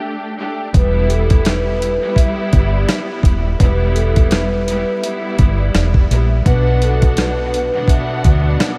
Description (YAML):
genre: hip hop, boom-bap hip-hop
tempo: 84 BPM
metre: 4/4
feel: swing 55% on 16ths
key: E minor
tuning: A4 = 440 Hz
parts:
  - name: rich studio string section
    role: accompaniment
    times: 0.0-8.8 s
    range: B2 to F#5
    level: -24 LUFS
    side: equal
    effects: cassette tape, high-pass filter, low-pass filter
  - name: deep dub fingered electric bass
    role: bass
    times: 0.7-8.6 s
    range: D#1 to D2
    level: -19 LUFS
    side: equal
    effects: none
  - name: dusty soul sampler-style drum kit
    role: drums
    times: 0.7-8.8 s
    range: hi-hat, kick drum, rim click, snare drum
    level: -18 LUFS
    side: equal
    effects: none
  - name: vibraphone with soft mallets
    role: melody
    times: 0.8-8.6 s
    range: A4 to E5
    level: -24 LUFS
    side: equal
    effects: high-pass filter, low-pass filter, diffuse ambient delay
room: light reverb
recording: vinyl crackle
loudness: -15 LUFS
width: mono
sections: 0.7-8.8 A section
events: none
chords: 0.0 Dsus4; 0.7 Em; 6.5 Bm